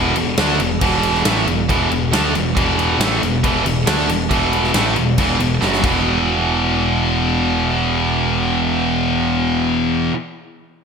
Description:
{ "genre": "hard rock", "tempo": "137 BPM", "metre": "4/4", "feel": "straight", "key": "unclear", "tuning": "A4 = 440 Hz", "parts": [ { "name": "high-gain distorted guitar", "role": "riff", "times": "0.0-10.2 s", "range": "E2 to D4", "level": "-19 LUFS", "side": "right 9 dB", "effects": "distortion" }, { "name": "scooped high-gain guitar", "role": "riff", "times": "0.0-10.2 s", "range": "E2 to D4", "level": "-20 LUFS", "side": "left 10 dB", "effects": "distortion" }, { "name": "growling picked electric bass", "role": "bass", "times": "0.0-10.1 s", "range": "E1 to D2", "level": "-23 LUFS", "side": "left 1 dB", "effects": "overdrive" }, { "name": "big rock drum kit", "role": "drums", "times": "0.2-5.9 s", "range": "crash cymbal, kick drum, snare drum", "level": "-21 LUFS", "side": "left 1 dB", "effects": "gated reverb" } ], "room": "moderate lush hall reverb, RT60 1.8 s", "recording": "bright 1980s-style digital production", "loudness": "-15 LUFS", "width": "side -6 dB against mid", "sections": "0.0-6.1 A section; 6.1-9.5 B section", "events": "drum fill 5.6-6.1", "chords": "0.0 E5; 5.6 F#5; 5.8 E5" }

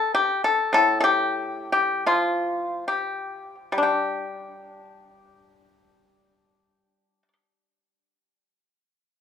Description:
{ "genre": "chinese traditional, Chinese solo plucked strings", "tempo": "57-101 BPM", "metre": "2/4", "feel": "rubato", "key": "unclear", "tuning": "A4 = 438 Hz", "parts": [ { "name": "pipa", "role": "solo", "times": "0.0-7.3 s", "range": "A2 to A4", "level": "-21 LUFS", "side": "left 2 dB", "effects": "none" } ], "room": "light reverb, studio ambience", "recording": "rough home demo mix, small room reverb", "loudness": "-21 LUFS", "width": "side -8 dB against mid", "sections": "0.0-3.8 A section; 3.8-7.8 B section", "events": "slowing down 0.8-3.8", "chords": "none" }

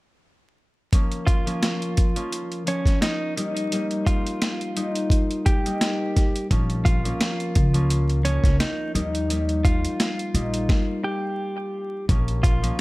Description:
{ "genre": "hip hop, boom-bap hip-hop", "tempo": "86 BPM", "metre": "4/4", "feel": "swing 55% on 16ths", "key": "Bb dorian", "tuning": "A4 = 440 Hz", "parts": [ { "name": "concert harp", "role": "accompaniment", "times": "0.9-12.8 s", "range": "F3 to Eb4", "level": "-27 LUFS", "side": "left 2 dB", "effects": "high-pass filter, low-pass filter" }, { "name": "boom bap sampler-style drum kit", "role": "drums", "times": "0.9-12.8 s", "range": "hi-hat, kick drum, snare drum", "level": "-21 LUFS", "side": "equal", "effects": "none" }, { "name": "direct-recorded clean electric guitar", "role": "melody", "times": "1.3-12.8 s", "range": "Db4 to G4", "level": "-30 LUFS", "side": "right 2 dB", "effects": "spring reverb, high-pass filter, low-pass filter, digital delay" }, { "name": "upright bass", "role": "bass", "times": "6.5-12.7 s", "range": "Bb1 to Eb2", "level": "-23 LUFS", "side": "equal", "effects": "none" } ], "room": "studio ambience", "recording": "vinyl crackle", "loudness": "-20 LUFS", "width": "side -21 dB against mid", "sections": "0.9-12.1 A section", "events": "stop 10.7-12.1", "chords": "0.9 Bbm; 3.4 Eb; 6.5 Bbm; 8.9 Eb; 12.1 Bbm" }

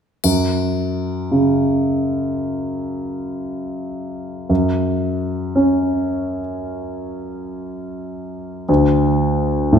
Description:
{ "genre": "cinematic, emotional film score for orchestra", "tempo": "57 BPM", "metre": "4/4", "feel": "rubato", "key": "unclear", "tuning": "A4 = 439 Hz", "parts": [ { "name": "warm grand piano", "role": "accompaniment", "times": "0.2-9.8 s", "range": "D2 to C#4", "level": "-18 LUFS", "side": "equal", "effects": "none" }, { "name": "triangle", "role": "percussion", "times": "0.2-2.3 s", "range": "none", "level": "-26 LUFS", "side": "left 9 dB", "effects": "none" } ], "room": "wet scoring stage reverb, RT60 1.9 s", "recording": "minimal, uncompressed stereo recording", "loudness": "-17 LUFS", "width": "side -8 dB against mid", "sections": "0.2-9.8 A section", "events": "none", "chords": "0.2 F#5; 8.7 D5" }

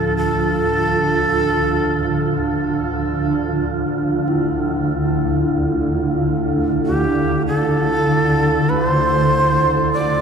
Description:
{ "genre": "dark ambient drone", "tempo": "49 BPM", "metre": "4/4", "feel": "straight", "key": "D minor", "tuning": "A4 = 440 Hz", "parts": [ { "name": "breathy bright shakuhachi", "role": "melody", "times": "0.0-10.2 s", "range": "G4 to D5", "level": "-20 LUFS", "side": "right 1 dB", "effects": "tape echo" }, { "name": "sweeping resonant pad", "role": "sustained chords", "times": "0.0-10.2 s", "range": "A2 to D4", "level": "-24 LUFS", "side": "right 2 dB", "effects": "chorus" }, { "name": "swarming drone", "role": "drone", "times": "0.0-10.2 s", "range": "D2 to D3", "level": "-20 LUFS", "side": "right 1 dB", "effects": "built-in reverb" }, { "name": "wind-like tuned noise texture", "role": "texture", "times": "0.0-10.2 s", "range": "F4", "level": "-26 LUFS", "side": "right 5 dB", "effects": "built-in reverb" }, { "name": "quartz singing bowl", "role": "arpeggios", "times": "4.3-10.2 s", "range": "E4", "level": "-27 LUFS", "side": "left 5 dB", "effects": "tape echo" } ], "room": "wet cathedral reverb, RT60 5.3 s", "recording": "cassette tape", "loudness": "-16 LUFS", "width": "side -6 dB against mid", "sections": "0.0-10.2 A section", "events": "fade-in on singing bowl 0.0-10.2; fade-out on analog synth pad 0.0-10.2; fade-out on synth texture 0.0-10.2; filter sweep on synth drone 0.0-10.2", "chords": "0.0 Dm" }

